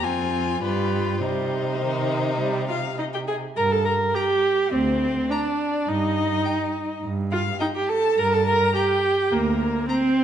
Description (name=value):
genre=quick classical-period movement for string quartet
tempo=104 BPM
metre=4/4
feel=straight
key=C minor, G minor from 3.6 s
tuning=A4 = 441 Hz
part: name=warm violin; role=melody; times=0.0-10.2 s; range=Bb4 to Bb5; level=-30 LUFS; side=left 10 dB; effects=none
part: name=clear violin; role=second line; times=0.0-10.0 s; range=Eb4 to Bb5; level=-31 LUFS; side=left 4 dB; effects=none
part: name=rich viola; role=accompaniment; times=0.0-10.2 s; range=Eb3 to Bb4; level=-22 LUFS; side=right 2 dB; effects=none
part: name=rich cello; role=bass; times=0.0-9.8 s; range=D2 to C3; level=-27 LUFS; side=right 3 dB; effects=none
room=wet recital hall reverb, RT60 1.3 s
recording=nothing above 10.3 kHz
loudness=-20 LUFS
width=side -9 dB against mid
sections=0.0-3.6 A section; 3.6-10.2 B section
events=none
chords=0.0 Fm; 0.6 G7; 1.2 Cm; 3.6 Gm; 5.9 F9/G (rootless); 8.2 Gm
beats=0.04 0.62 | 1.21 1.81 2.40 2.99 | 3.58 4.16 4.74 5.31 | 5.88 6.45 7.03 7.60 | 8.18 8.75 9.32 9.89